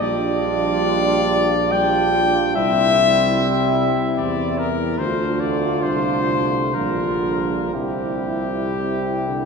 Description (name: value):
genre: classical, hymn-like piece for brass band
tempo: 58-75 BPM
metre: 3/4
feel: rubato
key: unclear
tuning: A4 = 440 Hz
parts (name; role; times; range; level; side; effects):
- warm cornet; melody; 0.0-9.5 s; G4 to G5; -21 LUFS; left 4 dB; none
- warm French horn section; second line; 0.0-9.5 s; E4 to F4; -26 LUFS; right 3 dB; none
- mellow trombone section; accompaniment; 0.0-9.5 s; G3 to D4; -27 LUFS; left 1 dB; none
- warm euphonium; accompaniment; 0.0-9.5 s; C3 to G3; -25 LUFS; right 5 dB; none
- mellow tuba; bass; 0.0-9.5 s; Bb1 to E2; -25 LUFS; right 1 dB; none
room: wet cathedral reverb, RT60 4.3 s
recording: recorded in a church or concert hall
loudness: -17 LUFS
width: side -5 dB against mid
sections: 0.0-9.5 A section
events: none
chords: 0.0 Gm7/Bb; 2.5 C; 5.0 Dm; 6.7 Gm7/Bb; 7.7 C